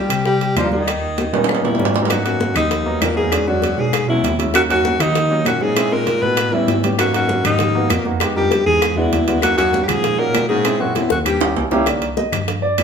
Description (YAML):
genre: Afro-Cuban jazz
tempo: 196 BPM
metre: 4/4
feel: straight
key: G# minor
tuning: A4 = 440 Hz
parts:
  - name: clear alto saxophone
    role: melody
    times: 0.0-11.5 s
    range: Eb4 to B4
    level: -20 LUFS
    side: equal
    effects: none
  - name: breathy baritone saxophone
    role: second line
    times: 0.0-11.5 s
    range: D#2 to G3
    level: -23 LUFS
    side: left 4 dB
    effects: none
  - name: warm concert grand piano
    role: accompaniment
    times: 0.0-12.8 s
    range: Eb3 to Eb5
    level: -22 LUFS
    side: right 2 dB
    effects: none
  - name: mellow tine electric piano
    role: bass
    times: 0.0-12.8 s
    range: B#1 to D#3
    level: -24 LUFS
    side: equal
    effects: medium stereo tremolo
  - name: bongos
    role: percussion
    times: 0.1-12.8 s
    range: none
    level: -27 LUFS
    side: left 6 dB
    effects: none
  - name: claves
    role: percussion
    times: 0.1-12.8 s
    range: none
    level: -30 LUFS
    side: left 4 dB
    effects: none
  - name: timbales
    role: percussion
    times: 0.1-12.8 s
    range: none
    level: -24 LUFS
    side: right 6 dB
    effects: none
  - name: congas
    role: percussion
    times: 0.3-12.8 s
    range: none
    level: -28 LUFS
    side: left 1 dB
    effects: none
room: wet large studio reverb, RT60 0.9 s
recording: band playing live in one room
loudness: -15 LUFS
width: side -6 dB against mid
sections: 0.0-2.1 A section; 2.1-11.9 B section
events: drum fill 1.3-2.1, 11.0-11.9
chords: 0.0 Cm7; 0.9 Eb7b13; 2.1 G#m9; 3.3 E13; 4.5 D#m7; 5.8 A#m7b5; 6.4 A9; 7.0 G#m9; 8.2 Fm7b5; 8.8 E9; 9.4 D#m7; 10.6 A#m7b5; 11.3 D#7b9; 11.9 Cm7